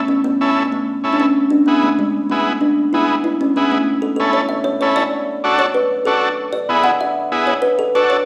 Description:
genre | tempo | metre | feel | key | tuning
latin | 191 BPM | 4/4 | straight | A major | A4 = 440 Hz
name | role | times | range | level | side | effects
kalimba | melody | 0.0-8.2 s | G#3 to F#5 | -19 LUFS | equal | none
overdriven combo organ | accompaniment | 0.4-8.2 s | B3 to A4 | -21 LUFS | equal | none
room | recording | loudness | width
wet large studio reverb, RT60 1.3 s | band playing live in one room | -17 LUFS | mono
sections
0.0-3.9 A section; 3.9-8.3 B section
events
none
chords
0.0 A; 1.4 E; 3.9 A; 5.1 D; 6.4 E7; 7.6 D

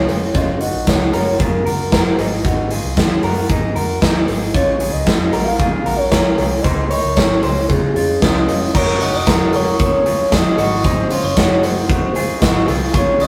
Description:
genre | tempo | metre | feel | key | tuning
jangly indie pop | 114 BPM | 4/4 | straight | unclear | A4 = 440 Hz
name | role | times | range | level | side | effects
warbly nostalgic lead | melody | 0.0-13.3 s | Ab4 to F5 | -23 LUFS | equal | chorus
electric guitar through a small old amp | arpeggios | 0.0-13.3 s | Db4 to Db5 | -24 LUFS | equal | spring reverb
vintage muted fingered electric bass | bass | 0.0-13.3 s | F1 to Db3 | -27 LUFS | equal | none
big rock drum kit | drums | 0.1-13.3 s | crash cymbal, hi-hat, kick drum, snare drum | -18 LUFS | equal | none
glockenspiel with hard plastic mallets | second line | 8.2-13.3 s | C6 to Eb6 | -29 LUFS | equal | none
tambourine | percussion | 8.7-13.3 s | none | -43 LUFS | equal | none
room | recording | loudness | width
moderate studio reverb, RT60 0.6 s | rough rehearsal-room recording, warm saturation | -16 LUFS | mono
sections
0.0-8.7 A section; 8.7-13.3 B section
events
none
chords
0.3 Gbmaj7; 2.2 Ab7(no3); 4.5 Bbm7; 6.6 Dbmaj7; 8.7 Gbmaj7; 10.6 Ab7

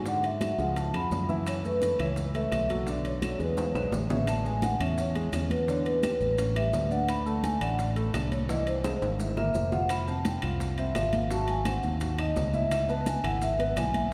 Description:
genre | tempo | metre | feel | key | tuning
Afro-Cuban jazz | 171 BPM | 4/4 | straight | F# minor | A4 = 440 Hz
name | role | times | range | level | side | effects
warm grand piano | accompaniment | 0.0-14.1 s | C#3 to F#5 | -37 LUFS | equal | none
modern bright fingered electric bass | bass | 0.0-14.1 s | F1 to G#2 | -33 LUFS | equal | none
vibraphone with soft mallets | melody | 0.1-14.1 s | B4 to B5 | -33 LUFS | equal | none
bongos | percussion | 0.1-14.1 s | none | -41 LUFS | equal | none
congas | percussion | 0.1-14.1 s | none | -41 LUFS | equal | none
maracas | percussion | 0.1-14.1 s | none | -51 LUFS | equal | none
timbales | percussion | 0.2-14.1 s | none | -42 LUFS | equal | none
claves | percussion | 0.4-13.9 s | none | -48 LUFS | equal | none
room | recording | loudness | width
wet church reverb, RT60 3.6 s | recorded in a church or concert hall | -28 LUFS | mono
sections
0.0-4.3 A section; 4.3-14.1 B section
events
drum fill 3.6-4.3, 8.8-9.9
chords
0.1 E13; 0.8 C#7; 1.5 F#m7; 2.9 Bm7; 3.6 E7; 4.3 Amaj7; 5.7 Em7; 6.4 A7; 7.1 D5; 8.5 Caug7; 9.9 F5; 11.3 G#7; 12.7 C#m7

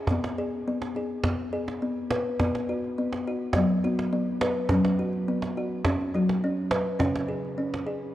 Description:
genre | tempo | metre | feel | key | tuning
world meditative, meditative tuned percussion | 104 BPM | 4/4 | swing 55% on 16ths | unclear | A4 = 440 Hz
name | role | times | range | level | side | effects
kalimba | arpeggios | 0.0-8.1 s | C#3 to B4 | -26 LUFS | left 1 dB | none
cajon | percussion | 0.1-7.9 s | none | -30 LUFS | right 2 dB | none
room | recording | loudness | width
wet church reverb, RT60 2.8 s | worn, warbling old tape, cassette tape, warbly pitch drift | -25 LUFS | side -14 dB against mid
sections
0.0-8.1 A section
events
none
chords
0.1 G#m; 2.4 B5; 4.7 F#5; 7.0 C#5

